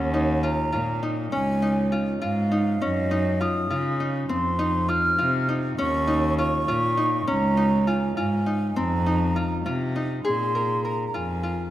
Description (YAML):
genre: contemporary instrumental, chamber music in an uneven meter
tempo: 202 BPM (eighths)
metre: 5/8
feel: straight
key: Bb minor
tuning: A4 = 436 Hz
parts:
  - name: mellow hollow concert flute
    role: melody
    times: 0.0-11.7 s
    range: Eb5 to F6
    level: -27 LUFS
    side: right 1 dB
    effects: none
  - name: Celtic harp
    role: arpeggios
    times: 0.0-11.7 s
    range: C4 to Bb4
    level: -26 LUFS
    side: left 1 dB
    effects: none
  - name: rich cello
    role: bass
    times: 0.0-11.7 s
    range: Db2 to Db3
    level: -25 LUFS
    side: equal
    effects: none
room: moderate concert hall reverb, RT60 2.1 s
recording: none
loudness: -21 LUFS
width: side -13 dB against mid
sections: 0.0-10.2 A section; 10.2-11.7 B section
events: none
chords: 0.0 Ebm7; 1.3 Dbadd9; 2.8 Gb5; 4.3 F5; 5.8 Eb5; 7.3 Dbadd9; 8.8 F7sus4; 10.2 Bb5